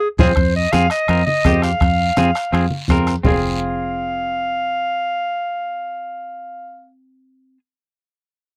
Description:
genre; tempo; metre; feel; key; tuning
latin, cumbia; 167 BPM; 4/4; straight; F minor; A4 = 441 Hz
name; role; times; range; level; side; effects
clear clarinet; melody; 0.0-6.9 s; C5 to F5; -23 LUFS; equal; none
semi-hollow electric guitar; accompaniment; 0.2-7.6 s; C4 to Bb4; -24 LUFS; equal; none
fingered electric bass; bass; 0.2-7.6 s; F1 to F2; -22 LUFS; equal; none
bombo; percussion; 0.2-3.3 s; none; -22 LUFS; equal; none
congas; percussion; 0.2-3.3 s; none; -26 LUFS; equal; none
guiro; percussion; 0.2-3.3 s; none; -35 LUFS; equal; none
timbales; percussion; 0.2-3.3 s; none; -29 LUFS; equal; none
room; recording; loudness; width
light reverb; dry, close 1970s-style studio recording; -18 LUFS; mono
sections
0.4-3.2 A section; 3.2-6.1 B section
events
drum fill 0.0-0.4; band accent 0.0-0.4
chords
0.4 F7(no3); 3.2 Fm

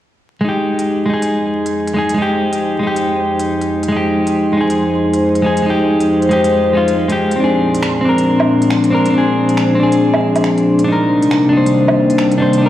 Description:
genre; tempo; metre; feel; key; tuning
future garage; 138 BPM; 4/4; swing 61% on 16ths; F dorian; A4 = 439 Hz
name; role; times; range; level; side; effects
clean electric guitar; accompaniment; 0.4-12.7 s; Ab3 to C5; -14 LUFS; equal; tape echo
airy breathy pad; sustained chords; 1.0-12.7 s; F2 to Eb4; -17 LUFS; equal; chorus
backwards swelling texture; texture; 0.4-12.7 s; C5; -22 LUFS; left 2 dB; built-in reverb
organic electronic drum kit; drums; 0.8-12.6 s; finger snaps, hi-hat, woodblock; -22 LUFS; right 2 dB; overdrive, vintage 12-bit sampler grit
room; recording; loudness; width
moderate lush hall reverb, RT60 1.9 s, digital ambience; played on a big sound system in a bare room, large studio reverb, vinyl crackle; -12 LUFS; side -13 dB against mid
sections
0.4-12.7 A section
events
fade-in on analog synth pad 0.4-12.7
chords
0.4 Fm7; 7.4 Bb7; 10.9 Cm7

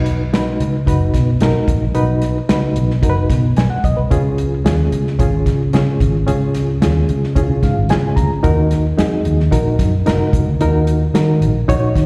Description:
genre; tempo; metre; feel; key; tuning
uptempo 1960s-style soul; 111 BPM; 4/4; straight; B lydian; A4 = 439 Hz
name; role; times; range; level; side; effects
reed electric piano; accompaniment; 0.0-12.1 s; C#4 to A#5; -22 LUFS; equal; overdrive, fast tremolo, slapback echo
vintage muted fingered electric bass; bass; 0.0-12.1 s; F#1 to D#3; -18 LUFS; equal; none
warm soul drum kit; drums; 0.1-12.1 s; hi-hat, kick drum, snare drum; -20 LUFS; equal; none
room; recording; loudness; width
small room reverb; live gig heard through the venue's PA, recital hall reverb; -16 LUFS; mono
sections
0.0-12.1 A section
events
reed electric piano fill 7.4-8.4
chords
0.0 B; 4.1 C#; 8.4 D#m

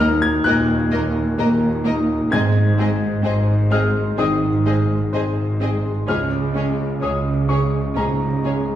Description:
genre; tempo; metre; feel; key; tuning
cinematic, emotional film score for orchestra; 64 BPM; 4/4; rubato; unclear; A4 = 441 Hz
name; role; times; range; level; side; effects
warm studio violin section; melody; 0.0-8.5 s; Db5 to Eb5; -33 LUFS; left 5 dB; none
warm studio violin section; second line; 0.0-8.5 s; Ab4 to Bb4; -31 LUFS; left 4 dB; none
clear baby grand piano; accompaniment; 0.0-8.8 s; Db2 to Ab6; -21 LUFS; left 2 dB; none
clear studio viola section; accompaniment; 0.0-8.5 s; Bb3 to Db4; -29 LUFS; right 2 dB; none
rich studio cello section; bass; 0.0-8.8 s; Eb2 to Db3; -21 LUFS; right 2 dB; none
rich studio double bass section; bass; 0.0-8.8 s; Ab1 to Eb2; -26 LUFS; right 1 dB; none
room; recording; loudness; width
wet recital hall reverb, RT60 1.4 s; heard from further back in the room; -17 LUFS; side -11 dB against mid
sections
0.0-8.8 A section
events
none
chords
0.0 Ebm; 2.3 Ab; 6.1 Db

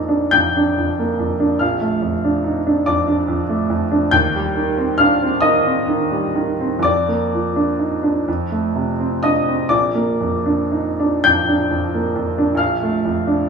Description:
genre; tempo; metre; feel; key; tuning
classical, romantic nocturne for solo piano; 38-50 BPM (dotted quarters); 6/8; rubato; Bb major; A4 = 439 Hz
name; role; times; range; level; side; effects
clear concert grand piano; solo; 0.0-13.5 s; Bb1 to G6; -16 LUFS; equal; none
room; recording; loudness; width
moderate recital hall reverb, RT60 1.5 s; small room ambience; -15 LUFS; side -5 dB against mid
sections
0.0-13.5 A section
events
none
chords
0.0 Bb; 1.6 Dm/Bb; 4.1 Cm/Eb; 6.8 Bb/F; 8.3 F; 9.7 Bb; 12.6 Dm/Bb

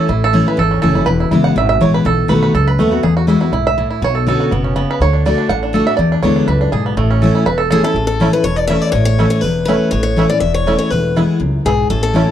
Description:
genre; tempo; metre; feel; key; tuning
bluegrass; 244 BPM; 4/4; straight; A major; A4 = 440 Hz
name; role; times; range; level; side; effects
bluegrass banjo; melody; 0.0-12.2 s; E3 to F#5; -18 LUFS; right 6 dB; none
picked steel-string acoustic guitar; accompaniment; 0.0-12.3 s; E2 to F#4; -15 LUFS; left 2 dB; none
upright bass; bass; 0.1-12.2 s; E1 to E2; -18 LUFS; equal; none
picked swing-style acoustic guitar; melody; 7.7-12.3 s; G#4 to E5; -18 LUFS; left 4 dB; none
room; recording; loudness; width
studio ambience; dry, close 1970s-style studio recording; -12 LUFS; side -10 dB against mid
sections
0.1-8.0 A section; 8.0-12.3 B section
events
five-string banjo solo 0.0-8.0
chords
0.1 A; 1.1 E; 2.1 B7; 3.0 Eadd9; 4.0 Bmadd9; 5.0 D; 6.0 E7; 7.0 A; 10.9 E

